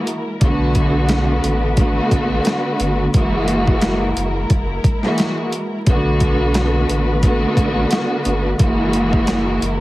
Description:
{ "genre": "hip hop, boom-bap hip-hop", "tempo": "88 BPM", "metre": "4/4", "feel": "swing 55% on 16ths", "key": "B dorian", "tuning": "A4 = 436 Hz", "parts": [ { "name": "warm studio string section", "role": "accompaniment", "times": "0.0-9.8 s", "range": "D3 to F#4", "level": "-18 LUFS", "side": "equal", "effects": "cassette tape, high-pass filter, low-pass filter" }, { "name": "warm studio string section", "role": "sustained chords", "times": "0.0-9.8 s", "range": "G#3 to B4", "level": "-28 LUFS", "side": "left 1 dB", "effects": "high-pass filter, low-pass filter" }, { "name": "boom bap sampler-style drum kit", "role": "drums", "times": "0.1-9.8 s", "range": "hi-hat, kick drum, snare drum", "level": "-18 LUFS", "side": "equal", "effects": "overdrive" }, { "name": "sub bass with octave", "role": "bass", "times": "0.4-9.8 s", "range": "F#1 to B1", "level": "-22 LUFS", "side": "equal", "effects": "none" } ], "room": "digital ambience", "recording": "heavily compressed radio sound, vinyl crackle", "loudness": "-15 LUFS", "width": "side -17 dB against mid", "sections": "0.0-5.9 A section; 5.9-9.8 A section", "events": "none", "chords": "0.4 Bm7; 3.1 F#9; 5.9 Bm7; 8.6 F#9", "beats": "| 0.41 1.10 1.78 2.46 | 3.14 3.82 4.51 5.19 | 5.87 6.55 7.23 7.92 | 8.60 9.28" }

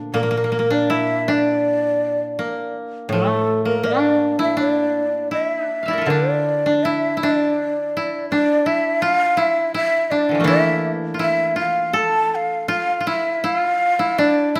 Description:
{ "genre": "japanese traditional, Japanese chamber music", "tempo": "82 BPM", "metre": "2/4", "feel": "rubato", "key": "D hirajoshi", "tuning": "A4 = 440 Hz", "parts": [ { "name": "koto", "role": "second line", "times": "0.0-14.6 s", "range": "D3 to F5", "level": "-23 LUFS", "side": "equal", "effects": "none" }, { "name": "koto", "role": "accompaniment", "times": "0.0-12.7 s", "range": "A2 to E3", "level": "-29 LUFS", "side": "equal", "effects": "none" }, { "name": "breathy mellow shakuhachi", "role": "melody", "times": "0.1-14.6 s", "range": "A4 to A5", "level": "-22 LUFS", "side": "equal", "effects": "none" } ], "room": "moderate scoring stage reverb, RT60 1.4 s", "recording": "none", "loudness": "-19 LUFS", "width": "mono", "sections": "0.0-6.1 A section; 6.1-14.6 B section", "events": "none", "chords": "none", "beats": "| 0.15 0.91 | 1.66 2.39 | 3.11 3.83 | 4.56 5.31 | 6.07 6.82 | 7.57 8.29 | 9.01 9.73 | 10.46 11.20 | 11.96 12.71 | 13.45 14.18" }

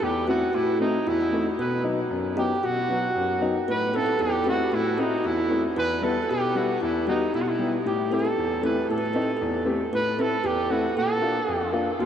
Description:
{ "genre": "klezmer", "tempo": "115 BPM", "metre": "4/4", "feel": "straight", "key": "A dorian sharp4", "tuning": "A4 = 440 Hz", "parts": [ { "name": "bright cornet", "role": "melody", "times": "0.0-12.1 s", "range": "D#4 to B4", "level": "-27 LUFS", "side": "right 2 dB", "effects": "analog delay" }, { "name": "kalimba", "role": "second line", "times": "0.0-12.1 s", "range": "D#4 to B4", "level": "-28 LUFS", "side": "right 1 dB", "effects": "analog delay" }, { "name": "clear upright piano", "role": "accompaniment", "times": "0.0-12.1 s", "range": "D#2 to G4", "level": "-26 LUFS", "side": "left 2 dB", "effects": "none" } ], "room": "wet huge ambient reverb, RT60 6.9 s", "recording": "dreamy mix soaked in reverb", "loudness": "-22 LUFS", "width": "side -9 dB against mid", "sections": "0.0-12.0 A section", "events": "none", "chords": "0.0 Am; 1.6 B; 3.7 Am; 5.8 Em; 7.9 Am; 11.0 Bb", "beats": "0.01 0.54 1.06 | 1.59 2.11 2.63 3.16 | 3.68 4.20 4.73 5.25 | 5.77 6.29 6.81 7.33 | 7.85 8.37 8.89 9.41 | 9.93 10.45 10.96 11.48 | 12.00" }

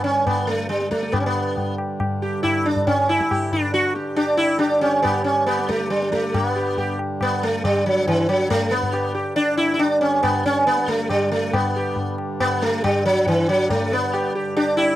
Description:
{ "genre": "indian classical, Hindustani", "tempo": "138 BPM", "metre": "3/4", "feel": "straight", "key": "G raga yaman", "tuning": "A4 = 440 Hz", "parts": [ { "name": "sitar", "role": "melody", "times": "0.0-15.0 s", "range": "E3 to G4", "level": "-19 LUFS", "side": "equal", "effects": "none" }, { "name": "hand-pumped harmonium", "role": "drone", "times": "0.0-15.0 s", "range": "G2 to D3", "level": "-30 LUFS", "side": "right 2 dB", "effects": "stereo widening" }, { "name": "tabla", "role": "percussion", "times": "0.3-14.9 s", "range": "none", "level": "-26 LUFS", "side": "left 2 dB", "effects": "none" } ], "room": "little or no reverb", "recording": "dry, close 1970s-style studio recording", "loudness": "-18 LUFS", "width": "side -14 dB against mid", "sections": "0.0-6.3 A section; 6.3-15.0 B section", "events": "none", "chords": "none", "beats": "0.27 0.70 | 1.13 1.57 2.00 | 2.44 2.87 3.31 | 3.74 4.17 4.61 | 5.04 5.47 5.91 | 6.34 6.78 7.21 | 7.64 8.07 8.51 | 8.94 9.38 9.81 | 10.24 10.67 11.11 | 11.54 11.97 12.40 | 12.84 13.27 13.70 | 14.13 14.56" }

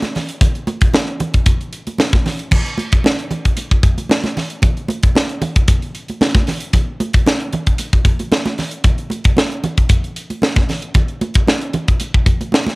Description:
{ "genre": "funk", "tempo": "114 BPM", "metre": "4/4", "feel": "straight", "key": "none", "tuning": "none", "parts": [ { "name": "crisp fusion drum kit", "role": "drums", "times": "0.0-12.8 s", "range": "crash cymbal, hi-hat, kick drum, snare drum", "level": "-14 LUFS", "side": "equal", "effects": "cassette tape" }, { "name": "congas", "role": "percussion", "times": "0.0-12.8 s", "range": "none", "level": "-23 LUFS", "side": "right 2 dB", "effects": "none" } ], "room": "small room ambience", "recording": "home recording on cassette", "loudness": "-14 LUFS", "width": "side -24 dB against mid", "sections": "0.0-2.5 A section; 2.5-12.8 B section", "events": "none", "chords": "none", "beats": "| 0.41 0.94 1.47 1.99 | 2.52 3.05 3.57 4.10 | 4.63 5.15 5.68 6.21 | 6.73 7.26 7.79 8.31 | 8.84 9.37 9.90 10.42 | 10.95 11.48 12.00 12.53" }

